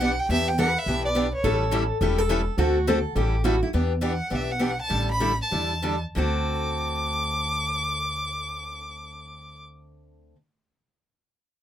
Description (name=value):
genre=acoustic string swing (jazz manouche)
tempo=178-210 BPM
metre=4/4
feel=swing 57% on 8ths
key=D mixolydian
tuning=A4 = 440 Hz
part: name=warm violin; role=melody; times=0.0-1.7, 4.1-9.6 s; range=C#5 to D6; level=-27 LUFS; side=equal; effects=none
part: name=picked steel-string acoustic guitar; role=second line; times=0.0-3.7 s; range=E4 to B4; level=-27 LUFS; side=equal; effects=none
part: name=picked steel-string acoustic guitar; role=accompaniment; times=0.0-10.4 s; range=D3 to A4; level=-27 LUFS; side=left 1 dB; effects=none
part: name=upright bass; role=bass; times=0.0-10.3 s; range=E1 to E2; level=-28 LUFS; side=equal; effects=none
room=little or no reverb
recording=none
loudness=-22 LUFS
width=side -10 dB against mid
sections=0.0-3.7 A section; 3.7-6.2 B section; 6.2-8.9 C section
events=slowing down 3.7-6.2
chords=0.0 Em7; 1.4 A7; 2.6 D7; 3.2 A7; 3.7 Em9; 4.9 A9sus4; 6.2 D7